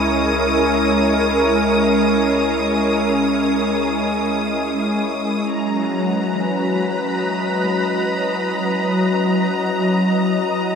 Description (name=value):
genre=ambient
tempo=free time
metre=none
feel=none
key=C# dorian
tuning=A4 = 441 Hz
part: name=soft additive organ-like pad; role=sustained chords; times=0.0-10.8 s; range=C#3 to D#5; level=-17 LUFS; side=equal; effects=ensemble chorus, built-in reverb, shimmer reverb
part: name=warm sub bass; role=bass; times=0.0-5.5 s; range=C#2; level=-33 LUFS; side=left 1 dB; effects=none
part: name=rich studio violin section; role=texture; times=0.0-10.8 s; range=A#5 to D#6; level=-25 LUFS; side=left 1 dB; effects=shimmer reverb
part: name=kalimba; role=arpeggios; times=5.8-10.0 s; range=E3 to A#5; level=-37 LUFS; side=equal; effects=none
room=wet huge ambient reverb, RT60 7.5 s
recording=none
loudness=-16 LUFS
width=side -6 dB against mid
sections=0.0-5.5 A section; 5.5-10.8 B section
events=fade-out on sub bass 0.0-5.5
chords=0.0 C#m; 5.5 C#m11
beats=free time